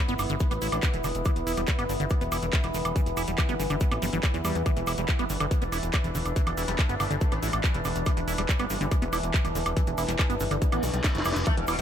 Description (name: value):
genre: psychedelic trance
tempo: 141 BPM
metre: 4/4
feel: straight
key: E minor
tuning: A4 = 439 Hz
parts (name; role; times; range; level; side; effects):
- overtone-sweeping drone; sustained chords; 0.0-11.8 s; E3 to D4; -34 LUFS; right 1 dB; chorus, built-in reverb, sidechain pumping
- warbly tape-like pad; texture; 0.0-11.8 s; E4 to E6; -35 LUFS; left 1 dB; chorus, built-in reverb, sidechain pumping
- liquid acid bass; riff; 0.1-11.8 s; D3 to E4; -33 LUFS; right 1 dB; phaser, auto-pan, sidechain pumping, tape echo
- fat analog bass; bass; 0.1-11.8 s; E1 to E2; -31 LUFS; equal; none
- drum and bass drum kit; drums; 0.1-11.8 s; handclaps, hi-hat, snare drum, woodblock; -32 LUFS; right 1 dB; none
- cabasa; percussion; 0.1-11.8 s; none; -44 LUFS; right 2 dB; none
- electronic kick drum; drums; 0.4-11.6 s; none; -25 LUFS; equal; none
- metallic wobble bass; second line; 0.7-0.9, 6.7-7.6 s; A3 to D4; -43 LUFS; left 4 dB; none
- reverse cymbal and impact; sound effects; 10.8-11.8 s; none; -36 LUFS; left 2 dB; none
- sitar; melody; 11.5-11.8 s; B2 to A3; -30 LUFS; left 2 dB; phaser, sidechain pumping
room: light reverb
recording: none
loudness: -24 LUFS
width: side -9 dB against mid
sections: 0.0-11.5 A section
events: reverse cymbal 10.8-11.5; drum fill 11.0-11.5; band accent 11.3; impact 11.5-11.8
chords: 0.0 E5